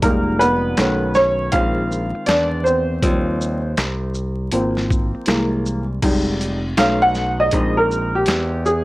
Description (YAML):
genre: hip hop, jazz-hop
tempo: 80 BPM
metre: 4/4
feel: swing 65% on 16ths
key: unclear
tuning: A4 = 436 Hz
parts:
  - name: warm upright piano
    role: accompaniment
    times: 0.0-8.8 s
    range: D#3 to F#5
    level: -18 LUFS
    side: equal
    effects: plate reverb
  - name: modern bright picked electric bass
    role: bass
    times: 0.0-8.8 s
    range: F1 to E2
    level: -23 LUFS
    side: equal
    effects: transformer saturation
  - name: boom bap sampler-style drum kit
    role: drums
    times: 0.0-8.8 s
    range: crash cymbal, hi-hat, kick drum, shaker, snare drum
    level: -22 LUFS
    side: equal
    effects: none
room: light reverb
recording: dry, gritty hardware recording, vinyl crackle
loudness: -16 LUFS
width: side -18 dB against mid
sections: 0.0-6.0 A section; 6.0-8.8 B section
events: upright piano solo 0.0-6.0, 6.0-8.8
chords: 0.0 Fm9; 0.8 B9; 1.5 Bb9sus4; 3.0 Eb6; 4.5 Ab69; 5.3 C7b13; 6.0 Fm9; 6.8 B9; 7.5 Bb9sus4